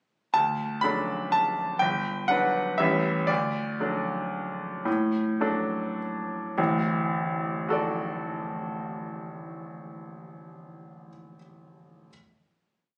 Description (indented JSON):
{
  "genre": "classical, piano waltz",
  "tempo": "100-130 BPM",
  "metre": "3/4",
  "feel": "rubato",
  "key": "D major",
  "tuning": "A4 = 440 Hz",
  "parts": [
    { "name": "bright grand piano", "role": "solo", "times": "0.3-12.1 s", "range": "D1 to B5", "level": "-28 LUFS", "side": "equal", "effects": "none" }
  ],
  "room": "moderate recital hall reverb, RT60 1.4 s",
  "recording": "recorded on a phone in the room, club ambience",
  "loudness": "-28 LUFS",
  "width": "mono",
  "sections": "0.4-6.6 A section; 6.6-9.9 final chord",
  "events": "slowing down 2.5-6.6",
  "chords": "0.4 D; 1.8 Gmaj7; 2.8 A9; 3.3 D",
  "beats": "| 0.36 0.84 1.34 | 1.82 2.30 2.79 | 3.29 3.80 4.34 | 4.86 5.41 6.00 | 6.58 7.12 7.68 | 8.24 8.79 9.35"
}